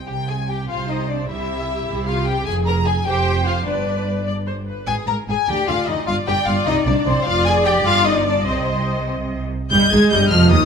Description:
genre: quick classical-period movement for string orchestra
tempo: 100 BPM (dotted quarters)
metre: 6/8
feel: straight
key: C minor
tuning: A4 = 442 Hz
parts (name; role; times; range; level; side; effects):
- warm symphonic violin section; melody; 0.0-10.7 s; C5 to Ab6; -22 LUFS; left 3 dB; none
- warm symphonic violin section; second line; 0.1-10.7 s; C4 to Eb5; -24 LUFS; left 4 dB; none
- rich symphonic cello section; bass; 0.1-10.7 s; Eb2 to D3; -24 LUFS; right 2 dB; none
- rich symphonic double bass section; bass; 0.1-10.7 s; F1 to Eb2; -23 LUFS; right 2 dB; none
- rich symphonic viola section; accompaniment; 0.7-10.7 s; Eb3 to Eb5; -24 LUFS; right 1 dB; none
room: moderate recital hall reverb, RT60 1.8 s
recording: minimal, uncompressed stereo recording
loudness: -17 LUFS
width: side -6 dB against mid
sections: 0.1-9.7 A section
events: none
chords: 0.1 C; 2.5 Fm; 3.7 G; 4.9 Absus2; 5.5 Ebmaj9; 6.1 G5; 6.7 Cmadd9; 7.3 Fm69; 7.9 G5; 8.5 Cm; 9.7 Fm9

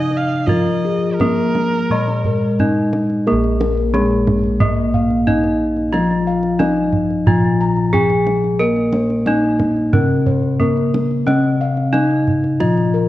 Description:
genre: Javanese gamelan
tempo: 90 BPM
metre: 4/4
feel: straight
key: Bb slendro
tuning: A4 = 439 Hz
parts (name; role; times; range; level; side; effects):
- gamelan-type bronze metallophone; melody; 0.0-13.1 s; Ab3-25c to Bb4; -19 LUFS; right 1 dB; none
- rich erhu; second line; 0.0-2.5 s; Bb4 to F5; -23 LUFS; right 3 dB; none
- gamelan-type bronze metallophone; accompaniment; 0.0-13.1 s; Db3-45c to Bb3; -20 LUFS; left 2 dB; none
- gamelan-type bossed gongs; arpeggios; 0.0-13.1 s; Ab4-25c to Bb5; -24 LUFS; left 4 dB; none
- gamelan-type bossed gongs; bass; 0.0-13.1 s; Bb1 to Bb4; -22 LUFS; equal; none
- kendang; percussion; 0.1-12.9 s; none; -22 LUFS; right 2 dB; none
room: moderate scoring stage reverb, RT60 1.7 s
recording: worn, warbling old tape, cassette tape, warbly pitch drift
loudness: -14 LUFS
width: side -15 dB against mid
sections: 0.0-3.3 A section; 3.3-13.1 B section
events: none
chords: none

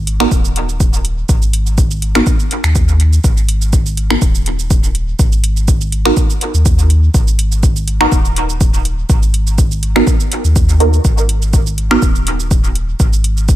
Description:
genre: dub techno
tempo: 123 BPM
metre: 4/4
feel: swing 54% on 16ths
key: G# minor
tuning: A4 = 439 Hz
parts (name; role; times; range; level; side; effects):
- pure sine sub bass; bass; 0.0-13.6 s; D#1 to D#2; -15 LUFS; equal; sidechain pumping
- soft vintage rhythm box; drums; 0.1-13.6 s; cabasa, finger snaps, hi-hat; -21 LUFS; right 3 dB; dub echo
- filtered dub chord stab; stabs; 0.2-12.1 s; B3 to A#4; -17 LUFS; right 2 dB; phaser, sidechain pumping, dub echo
- electronic kick drum; drums; 0.3-13.6 s; none; -13 LUFS; equal; none
room: digital ambience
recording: none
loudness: -11 LUFS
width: side -14 dB against mid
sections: 0.0-13.6 A section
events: none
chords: 0.0 G#m7

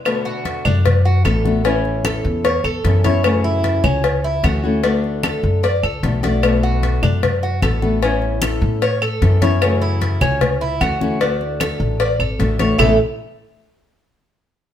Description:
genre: latin, Cuban son and guajira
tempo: 151 BPM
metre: 4/4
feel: straight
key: A major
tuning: A4 = 440 Hz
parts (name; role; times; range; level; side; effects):
- nylon-string guitar; accompaniment; 0.1-13.0 s; A2 to F#4; -22 LUFS; left 4 dB; none
- claves; percussion; 0.1-12.9 s; none; -24 LUFS; right 2 dB; none
- congas; percussion; 0.1-12.9 s; none; -24 LUFS; left 2 dB; none
- cowbell and bongos; percussion; 0.1-12.9 s; none; -22 LUFS; left 4 dB; none
- Cuban tres; arpeggios; 0.3-13.0 s; A3 to D5; -22 LUFS; right 2 dB; none
- upright bass; bass; 0.7-13.0 s; G#1 to A2; -19 LUFS; equal; none
room: light reverb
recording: band playing live in one room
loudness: -15 LUFS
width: side -10 dB against mid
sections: 0.1-12.8 A section; 12.8-14.4 B section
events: none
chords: 0.1 Bm7; 1.6 Aadd9; 3.2 F#m7; 4.8 D; 6.4 Bm7; 8.0 Aadd9; 9.6 F#m7; 11.2 D; 12.8 A5

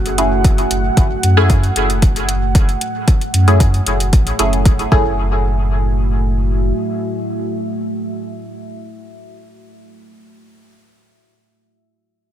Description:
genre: dub techno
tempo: 114 BPM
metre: 4/4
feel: straight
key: F# minor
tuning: A4 = 442 Hz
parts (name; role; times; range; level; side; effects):
- deep dark ambient pad; sustained chords; 0.0-9.8 s; A3 to F#5; -22 LUFS; right 2 dB; chorus, built-in reverb, sidechain pumping
- warm sub bass; bass; 0.0-6.7 s; F#1 to F#2; -16 LUFS; equal; sidechain pumping
- electronic hi-hat; drums; 0.1-4.9 s; none; -23 LUFS; equal; overdrive
- filtered dub chord stab; stabs; 0.2-9.8 s; A3 to G#4; -20 LUFS; left 1 dB; chorus, phaser, sidechain pumping, dub echo
- electronic kick drum; drums; 0.4-5.0 s; none; -13 LUFS; equal; overdrive
room: little or no reverb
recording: none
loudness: -13 LUFS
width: side -11 dB against mid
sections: 0.0-5.2 A section; 5.2-9.4 B section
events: none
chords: 0.0 F#m7

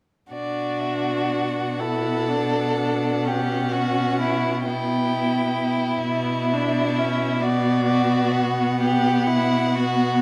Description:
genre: classical, slow romantic movement for string quartet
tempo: 40-45 BPM (dotted quarters)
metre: 6/8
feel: rubato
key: B minor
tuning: A4 = 440 Hz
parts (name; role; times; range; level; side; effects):
- rich violin; melody; 0.3-10.2 s; D5 to G5; -32 LUFS; equal; none
- rich violin; second line; 0.3-10.2 s; E4 to A4; -27 LUFS; equal; none
- rich viola; accompaniment; 0.3-10.2 s; B3 to E4; -27 LUFS; equal; none
- rich cello; bass; 0.3-10.2 s; B2; -28 LUFS; equal; none
room: moderate recital hall reverb, RT60 1.5 s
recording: none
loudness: -22 LUFS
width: mono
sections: 0.3-10.2 A section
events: none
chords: 0.3 Bm; 3.3 C#m7b5/B; 6.1 Bm; 8.8 Em/B

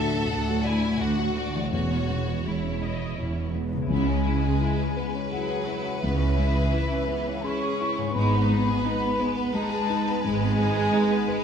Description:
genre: cinematic, emotional film score for orchestra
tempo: 85 BPM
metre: 3/4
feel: rubato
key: E major, C# minor from 3.9 s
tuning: A4 = 441 Hz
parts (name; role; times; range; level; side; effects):
- warm studio violin section; melody; 0.0-11.4 s; B4 to G#5; -35 LUFS; left 5 dB; none
- clear studio violin section; second line; 0.0-11.4 s; G#3 to A4; -33 LUFS; left 1 dB; none
- dark concert grand piano; accompaniment; 0.0-11.4 s; C#2 to D5; -30 LUFS; left 2 dB; none
- dark studio viola section; accompaniment; 0.0-11.4 s; E3 to D#5; -30 LUFS; right 2 dB; none
- concert harp; arpeggios; 0.0-11.4 s; G#2 to D5; -33 LUFS; left 7 dB; none
- rich studio cello section; bass; 0.0-10.8 s; D2 to C#3; -30 LUFS; right 2 dB; none
- rich studio double bass section; bass; 0.0-10.8 s; E1 to D2; -29 LUFS; right 3 dB; none
- mellow large flute ensemble; second line; 3.9-11.4 s; E5 to C#6; -31 LUFS; left 2 dB; none
room: moderate scoring stage reverb, RT60 1.8 s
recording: none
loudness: -23 LUFS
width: side -7 dB against mid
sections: 0.0-3.9 A section; 3.9-11.4 B section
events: none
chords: 0.0 D; 1.7 E6; 3.9 C#m7; 8.2 G#m

